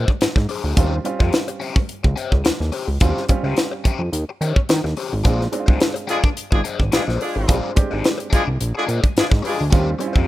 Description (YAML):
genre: funk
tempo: 107 BPM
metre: 4/4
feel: straight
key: unclear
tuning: A4 = 440 Hz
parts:
  - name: biting overdriven guitar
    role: accompaniment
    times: 0.0-10.3 s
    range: Db4 to C5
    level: -28 LUFS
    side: left 6 dB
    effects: phaser
  - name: fat analog bass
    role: bass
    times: 0.0-10.3 s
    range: Ab1 to Eb3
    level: -21 LUFS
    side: equal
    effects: none
  - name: crisp fusion drum kit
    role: drums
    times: 0.1-10.3 s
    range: hi-hat, kick drum, snare drum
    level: -18 LUFS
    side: equal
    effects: none
  - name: warm upright piano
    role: stabs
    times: 0.8-10.3 s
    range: G3 to G4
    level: -26 LUFS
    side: right 4 dB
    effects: none
  - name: dark horn section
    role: second line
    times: 6.1-9.6 s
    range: Ab3 to Ab4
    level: -24 LUFS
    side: left 1 dB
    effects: none
room: small room ambience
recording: rough home demo mix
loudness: -17 LUFS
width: side -16 dB against mid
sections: 0.0-10.3 A section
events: none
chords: 0.0 Bb9 (rootless); 0.8 Eb13; 5.2 Bb9; 9.7 Eb13